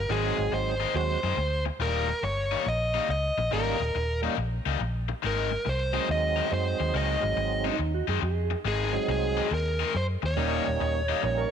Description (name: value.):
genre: blues.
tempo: 140 BPM.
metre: 4/4.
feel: swing 66% on 8ths.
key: unclear.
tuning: A4 = 440 Hz.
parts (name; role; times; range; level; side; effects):
biting lead guitar; melody; 0.0-11.5 s; Ab4 to Eb5; -29 LUFS; equal; overdrive.
vintage muted fingered electric bass; bass; 0.0-11.4 s; Eb1 to Gb2; -30 LUFS; equal; none.
tonewheel organ; accompaniment; 0.1-11.5 s; Gb3 to Gb4; -33 LUFS; right 12 dB; slow rotary speaker, overdrive, chorus vibrato.
cranked stack guitar; riff; 0.1-11.3 s; Eb3 to Eb4; -32 LUFS; left 15 dB; overdrive.
clean lap steel guitar; second line; 7.7-11.5 s; Eb4 to Eb5; -34 LUFS; right 10 dB; none.
room: light reverb.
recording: 1960s-style stereo with parts hard left and right.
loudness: -25 LUFS.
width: side -8 dB against mid.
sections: 0.0-11.5 A section.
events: none.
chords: 0.1 Ab7; 1.8 Eb7; 5.2 Ab7; 10.4 Eb7.